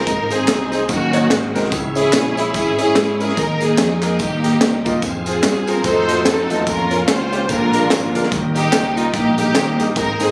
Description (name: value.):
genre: uptempo gospel.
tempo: 146 BPM.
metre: 4/4.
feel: swing 59% on 8ths.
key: unclear.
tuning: A4 = 440 Hz.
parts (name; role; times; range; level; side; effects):
rich studio string section; melody; 0.0-10.3 s; Bb3 to C5; -22 LUFS; equal; none.
clear concert grand piano; accompaniment; 0.0-10.3 s; Ab2 to Eb5; -24 LUFS; equal; none.
bright tonewheel organ; sustained chords; 0.0-10.3 s; D3 to Ab4; -27 LUFS; equal; overdrive, chorus vibrato, fast rotary speaker.
deep dub fingered electric bass; bass; 0.1-10.3 s; G1 to Ab2; -27 LUFS; equal; none.
crisp fusion drum kit; drums; 0.1-10.3 s; hi-hat, kick drum, snare drum; -24 LUFS; equal; none.
tambourine and handclaps; percussion; 0.1-10.3 s; none; -31 LUFS; equal; none.
room: light reverb, studio reverb.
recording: recorded on a phone in the room, club ambience, compression.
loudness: -17 LUFS.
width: mono.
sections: 0.0-10.3 A section.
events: none.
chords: 0.1 Ab; 0.9 Ebm7; 1.3 Ab9; 1.7 Dbm; 3.4 Ebsus4; 4.2 Eb; 5.0 Fm; 5.8 F7b9; 6.7 Bbm/F; 7.5 Bb7; 8.3 Eb.